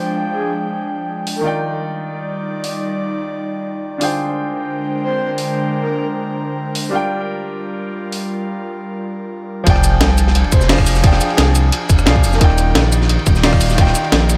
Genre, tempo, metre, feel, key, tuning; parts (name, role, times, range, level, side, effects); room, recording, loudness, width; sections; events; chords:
liquid drum and bass; 175 BPM; 4/4; swing 53% on 16ths; F dorian; A4 = 440 Hz
clear concert grand piano; accompaniment; 0.0-14.4 s; D3 to G5; -25 LUFS; equal; tape echo
airy breathy pad; sustained chords; 0.0-14.4 s; D3 to G5; -26 LUFS; equal; chorus
breathy flute-like synth lead; melody; 0.3-1.5, 5.0-6.1, 10.5-12.4 s; Ab4 to C5; -28 LUFS; equal; lush chorus, dub echo
breakbeat sampler-style drum kit; drums; 1.3-14.4 s; cabasa, hi-hat, rim click, snare drum; -22 LUFS; equal; analog delay
smooth synth bass; bass; 9.7-14.4 s; Eb1 to C2; -17 LUFS; equal
crunchy breakbeat drum kit; drums; 9.7-14.4 s; hi-hat, ride cymbal, snare drum; -26 LUFS; equal; high-pass filter on cymbals, high-pass filter on hats, high-pass filter on snare, high-pass filter on room, analog delay
electronic kick drum; drums; 9.7-13.9 s; -15 LUFS; equal
sub drop; sound effects; 9.7-11.0 s; -23 LUFS; equal
moderate spring reverb, RT60 1.4 s, studio reverb; echo-heavy mix; -17 LUFS; mono
0.0-9.7 A section; 9.7-14.4 B section
drop 9.7-14.4; impact 9.7-11.0
0.0 Fm69; 1.4 Ebmaj7; 4.0 Bb13/D; 6.9 Gm7; 9.7 Fm69; 12.4 Ebmaj7